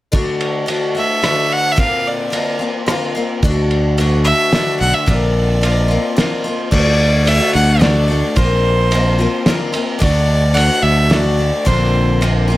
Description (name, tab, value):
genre	folk rock and heartland rock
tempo	109 BPM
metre	3/4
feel	straight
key	unclear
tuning	A4 = 442 Hz
part	picked twelve-string acoustic guitar	accompaniment	0.1-12.6 s	Bb2 to F#4	-19 LUFS	left 3 dB	plate reverb
part	cloth-damped thuddy drum kit	drums	0.1-12.3 s	crash cymbal, kick drum, ride cymbal, rim click, snare drum	-19 LUFS	equal	none
part	clear fiddle	melody	1.0-12.2 s	C5 to F#5	-18 LUFS	equal	plate reverb, tape echo
part	fingered electric bass	bass	3.4-12.6 s	Bb1 to D2	-15 LUFS	equal	none
room	light reverb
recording	none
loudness	-13 LUFS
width	side -16 dB against mid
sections	0.1-6.7 A section; 6.7-12.6 B section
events	none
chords	0.1 D; 1.8 Bbadd9; 3.4 D; 5.1 Bbadd9; 6.7 D; 8.4 Bbadd9; 10.0 D; 11.7 Bbadd9